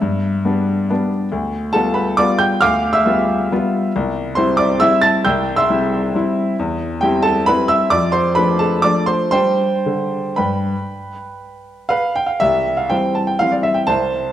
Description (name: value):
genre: classical, piano waltz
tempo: 110-147 BPM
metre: 3/4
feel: rubato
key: C major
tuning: A4 = 440 Hz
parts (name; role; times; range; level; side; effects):
- warm grand piano; solo; 0.0-14.3 s; C2 to A6; -15 LUFS; equal; none
room: wet recital hall reverb, RT60 1.6 s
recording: faint mains hum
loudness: -14 LUFS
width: side -11 dB against mid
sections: 0.0-12.4 A section; 12.4-14.3 B section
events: none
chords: 0.0 G; 1.3 G7/D; 3.9 C; 6.6 C/E; 7.9 Dm/F; 9.3 G; 12.4 C